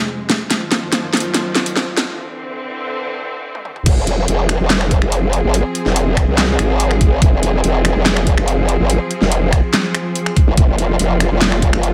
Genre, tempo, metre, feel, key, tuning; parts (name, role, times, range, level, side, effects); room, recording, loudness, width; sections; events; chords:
heavy wobble dubstep; 143 BPM; 4/4; half-time; F phrygian; A4 = 440 Hz
warm studio string section; sustained chords; 0.0-11.9 s; F2 to Ab4; -24 LUFS; equal; sidechain pumping, low-pass filter
dubstep drum kit; drums; 0.3-11.9 s; crash cymbal, finger snaps, handclaps, hi-hat, snare drum, toms; -20 LUFS; equal
growl bass; bass; 3.9-11.9 s; F1 to C2; -18 LUFS; equal; chorus, overdrive
electronic kick drum; drums; 3.9-11.7 s; -15 LUFS; equal
light reverb, digital ambience; high-pass filter; -16 LUFS; mono
0.0-3.9 A section; 3.9-11.9 B section
build-up 0.0-3.9; drum fill 0.0-2.2, 3.5-3.9; filter sweep on string section 0.0-3.9; break 2.2-3.9; drop 3.9-11.9
0.0 Fm; 0.5 Ebmadd9; 2.2 Cadd9; 3.9 Fm